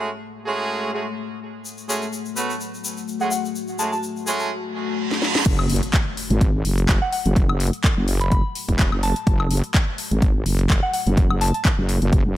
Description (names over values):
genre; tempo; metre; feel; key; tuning
bass house; 126 BPM; 4/4; swing 55% on 16ths; F# minor; A4 = 440 Hz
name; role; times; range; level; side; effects
deep dark ambient pad; sustained chords; 0.0-12.4 s; A3 to F#5; -32 LUFS; left 6 dB; chorus, built-in reverb, sidechain pumping
brilliant horn section; stabs; 0.0-4.5 s; G#3 to B4; -27 LUFS; right 2 dB; sidechain pumping, tape echo
egg shaker; percussion; 1.7-4.5 s; none; -30 LUFS; left 4 dB; none
soft synth bell; melody; 3.2-4.0, 7.0-11.6 s; F#5 to B5; -28 LUFS; equal; chorus, tape echo
reverse cymbal and impact; sound effects; 4.8-7.4 s; none; -27 LUFS; right 3 dB; none
house drum kit; drums; 5.1-12.2 s; crash cymbal, handclaps, hi-hat, snare drum, woodblock; -26 LUFS; left 1 dB; overdrive, studio ambience
wobble bass; bass; 5.5-12.4 s; E1 to G#1; -20 LUFS; equal; chorus, sidechain pumping
electronic kick drum; drums; 5.5-12.2 s; none; -19 LUFS; equal; overdrive, studio ambience
room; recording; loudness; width
digital ambience; none; -19 LUFS; side -14 dB against mid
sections
0.0-5.5 A section; 5.5-12.4 B section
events
filter sweep on ambient pad 0.0-5.5; reverse cymbal 4.8-5.5; drum fill 5.1-5.5; drop 5.5-12.4; impact 5.5-7.4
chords
0.0 F#madd9; 5.5 F#m